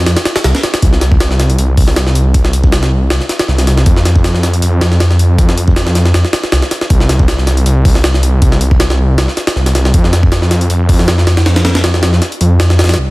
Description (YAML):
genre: drum and bass, jungle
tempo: 158 BPM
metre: 4/4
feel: swing 54% on 16ths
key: unclear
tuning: A4 = 440 Hz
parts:
  - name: detuned saw bass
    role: bass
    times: 0.0-13.1 s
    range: C2 to F2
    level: -11 LUFS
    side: equal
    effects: none
  - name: jungle sampler-style drum kit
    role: drums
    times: 0.1-13.0 s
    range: hi-hat, kick drum, snare drum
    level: -12 LUFS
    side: equal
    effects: small room ambience
room: little or no reverb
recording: dense, heavily limited modern master, vinyl crackle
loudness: -9 LUFS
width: side -21 dB against mid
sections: 0.0-13.0 A section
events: kick drops out 12.2-13.0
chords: none